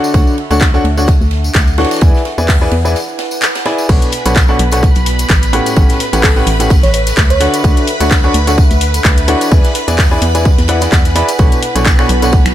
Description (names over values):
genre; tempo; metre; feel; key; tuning
piano house; 128 BPM; 4/4; swing 56% on 16ths; unclear; A4 = 439 Hz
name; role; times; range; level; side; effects
bright baby grand piano; riff; 0.0-12.3 s; A2 to B5; -16 LUFS; left 1 dB; sidechain pumping, tape echo
tambourine; percussion; 0.0-12.5 s; none; -28 LUFS; left 2 dB; none
warbly tape-like pad; texture; 0.0-12.5 s; B3 to C#6; -23 LUFS; right 1 dB; chorus, built-in reverb, sidechain pumping
organ-like FM bass; bass; 0.1-12.5 s; A1 to E2; -15 LUFS; equal; sidechain pumping
electronic kick drum; drums; 0.1-12.4 s; none; -10 LUFS; equal; none
open jazz drum kit; drums; 0.1-12.4 s; hi-hat, ride cymbal, snare drum; -27 LUFS; right 2 dB; sidechain pumping on cymbals, high-pass filter on cymbals, sidechain pumping on hats, high-pass filter on hats, high-pass filter on snare, high-pass filter on room
house drum kit; drums; 0.6-12.5 s; crash cymbal, finger snaps, handclaps, hi-hat; -18 LUFS; left 1 dB; none
string machine, violins; sustained chords; 3.9-12.5 s; B4 to B5; -21 LUFS; equal; ensemble chorus, sidechain pumping
bell-like FM electric piano; melody; 5.5-7.5 s; A4 to C#5; -20 LUFS; right 3 dB; chorus, tremolo, tape echo
room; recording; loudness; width
small room ambience; none; -9 LUFS; side -12 dB against mid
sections
0.0-12.5 A section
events
fade-in on ambient pad 0.0-12.5; break 3.0-3.9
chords
0.0 Dmaj7; 2.0 E7; 3.9 Bm9; 5.5 A13; 7.4 Dmaj7; 9.5 E7; 11.4 Bm9